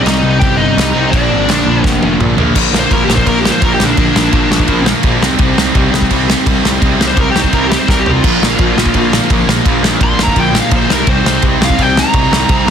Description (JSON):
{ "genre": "punk rock", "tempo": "169 BPM", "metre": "4/4", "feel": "straight", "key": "unclear", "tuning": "A4 = 440 Hz", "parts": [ { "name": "bluesy overdriven lead guitar", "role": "melody", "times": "0.0-4.9, 7.1-12.7 s", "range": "D4 to C6", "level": "-16 LUFS", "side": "left 1 dB", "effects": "distortion" }, { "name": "raw garage guitar", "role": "riff", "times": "0.0-12.7 s", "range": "Bb2 to C4", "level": "-19 LUFS", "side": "right 13 dB", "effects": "overdrive" }, { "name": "sludgy distorted guitar", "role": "riff", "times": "0.0-12.7 s", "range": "Bb2 to C4", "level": "-18 LUFS", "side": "left 12 dB", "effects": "overdrive" }, { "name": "sludgy distorted guitar", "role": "riff", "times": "0.0-12.7 s", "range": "Bb2 to Eb4", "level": "-18 LUFS", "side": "equal", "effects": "overdrive" }, { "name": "fuzz picked electric bass", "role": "bass", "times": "0.0-12.7 s", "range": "F1 to C2", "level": "-18 LUFS", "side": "equal", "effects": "overdrive" }, { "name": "loose indie drum kit", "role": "drums", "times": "0.1-12.7 s", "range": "crash cymbal, kick drum, ride cymbal, snare drum, toms", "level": "-14 LUFS", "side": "equal", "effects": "none" } ], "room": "little or no reverb", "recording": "dense, heavily limited modern master", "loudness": "-9 LUFS", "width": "side -8 dB against mid", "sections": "0.0-2.5 A section; 2.5-12.7 B section", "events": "half time 0.0-2.5; drum fill 1.8-2.5, 7.9-8.2; lead electric guitar solo 2.5-12.7", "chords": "0.0 Cm; 1.1 Bb; 5.2 Cm; 8.2 Bb; 10.9 Cm" }